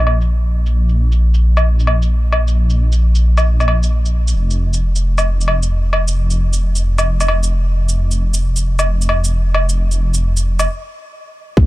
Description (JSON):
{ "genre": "future garage", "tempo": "133 BPM", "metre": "4/4", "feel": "swing 66% on 16ths", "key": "unclear", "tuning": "A4 = 438 Hz", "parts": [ { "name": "dark detuned saw bass", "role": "bass", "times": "0.0-11.7 s", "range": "F1 to Bb1", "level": "-14 LUFS", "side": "equal", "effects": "sidechain pumping" }, { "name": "woodblock and shaker", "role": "drums", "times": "0.1-10.7 s", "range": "none", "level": "-22 LUFS", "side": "equal", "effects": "low-pass filter on perc, low-pass filter on snare, low-pass filter on room" }, { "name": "electronic kick drum", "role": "drums", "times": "11.6-11.7 s", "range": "none", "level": "-8 LUFS", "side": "equal", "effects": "none" } ], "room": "little or no reverb", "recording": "dark, warm production", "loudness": "-13 LUFS", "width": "side -17 dB against mid", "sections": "0.0-11.6 A section", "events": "filter sweep on drum 0.0-11.6; stop 10.7-11.6", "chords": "none", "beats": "0.29 | 0.74 1.20 1.65 2.10 | 2.55 3.00 3.45 3.90 | 4.35 4.80 5.26 5.71 | 6.16 6.61 7.06 7.51 | 7.96 8.41 8.87 9.32 | 9.77 10.22 10.67 11.12 | 11.57" }